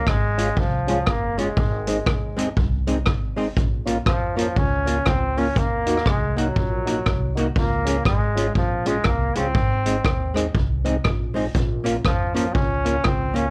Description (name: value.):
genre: ska.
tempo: 120 BPM.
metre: 4/4.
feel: swing 62% on 8ths.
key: Db major.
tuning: A4 = 440 Hz.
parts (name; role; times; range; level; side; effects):
brilliant trombone; melody; 0.0-13.5 s; F3 to Db4; -28 LUFS; equal; none.
upright bass; bass; 0.1-13.5 s; Gb1 to F2; -29 LUFS; equal; none.
street-band drum kit; drums; 0.1-13.4 s; hi-hat, kick drum, rim click; -25 LUFS; equal; none.
hollow-body jazz guitar; accompaniment; 0.4-13.4 s; Ab3 to Gb4; -30 LUFS; equal; none.
mellow tonewheel organ; stabs; 0.4-13.5 s; C4 to Bb4; -32 LUFS; equal; overdrive, chorus vibrato, slow rotary speaker.
room: light reverb.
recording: cassette tape.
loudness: -22 LUFS.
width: mono.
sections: 0.0-13.5 A section.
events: none.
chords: 0.0 Db; 1.6 Ab; 3.6 Bbm; 5.6 Ebm; 7.6 Db; 9.6 Ab; 11.5 Bbm.